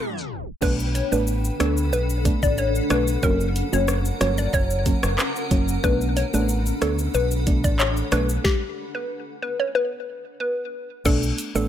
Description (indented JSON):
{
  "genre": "dancehall",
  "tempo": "92 BPM",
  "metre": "4/4",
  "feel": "straight",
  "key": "B minor",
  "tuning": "A4 = 436 Hz",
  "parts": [
    { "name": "granular cloud pad", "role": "sustained chords", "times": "0.0-11.7 s", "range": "C#4 to B5", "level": "-30 LUFS", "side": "left 1 dB", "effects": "built-in reverb, sidechain pumping" },
    { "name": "afro-pop drum kit", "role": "drums", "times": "0.1-11.7 s", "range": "crash cymbal, handclaps, hi-hat, kick drum, rim click, shaker, snare drum", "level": "-25 LUFS", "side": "equal", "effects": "none" },
    { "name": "soft round pluck", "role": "accompaniment", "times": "0.3-11.7 s", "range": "F#3 to D4", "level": "-27 LUFS", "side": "right 4 dB", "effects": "chorus" },
    { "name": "deep dub fingered electric bass", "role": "bass", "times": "0.3-11.7 s", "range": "F#1 to D2", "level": "-24 LUFS", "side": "equal", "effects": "none" },
    { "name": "hollow square pluck", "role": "melody", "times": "0.6-11.7 s", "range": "G4 to D5", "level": "-26 LUFS", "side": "left 2 dB", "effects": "chorus, ping-pong delay" }
  ],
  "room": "little or no reverb",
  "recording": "tape stop",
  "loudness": "-20 LUFS",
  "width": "side -10 dB against mid",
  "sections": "0.6-11.1 A section",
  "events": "break 0.0-0.6; tape stop 0.0-0.6; stop 8.4-11.1",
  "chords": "0.0 G; 0.6 Bm7; 3.2 F#; 5.8 Bm7; 8.4 N.C.; 11.1 Bm7",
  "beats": "| 0.62 1.27 1.93 2.58 | 3.23 3.88 4.53 5.19 | 5.84 6.49 7.14 7.79 | 8.45 9.10 9.75 10.40 | 11.06"
}